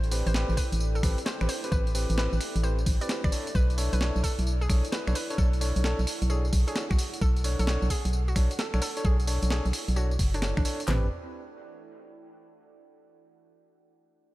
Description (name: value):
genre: UK garage, two-step garage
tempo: 131 BPM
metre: 4/4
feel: swing 66% on 16ths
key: unclear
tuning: A4 = 441 Hz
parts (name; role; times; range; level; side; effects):
- hollow square pluck; melody; 0.0-11.1 s; C4 to D5; -38 LUFS; equal; chorus, diffuse ambient delay
- organ-like FM bass; bass; 0.0-11.1 s; F#1 to B1; -26 LUFS; equal; none
- breakbeat sampler-style drum kit; drums; 0.0-10.9 s; finger snaps, hi-hat, snare drum, tambourine; -34 LUFS; equal; studio reverb
- deep dark ambient pad; texture; 0.0-12.7 s; E4 to G5; -41 LUFS; equal; chorus, built-in reverb, sidechain pumping
- overdriven tine electric piano; stabs; 0.1-11.1 s; C4 to C#5; -36 LUFS; equal; diffuse ambient delay
- garage drum kit; drums; 0.6-11.0 s; handclaps, kick drum, snare drum, toms; -26 LUFS; equal; studio reverb
room: light reverb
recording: none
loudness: -24 LUFS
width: side -18 dB against mid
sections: 0.0-10.9 A section; 10.9-12.7 B section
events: drop 0.0-10.9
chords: 0.0 Am7; 3.3 Bm7; 10.9 Am7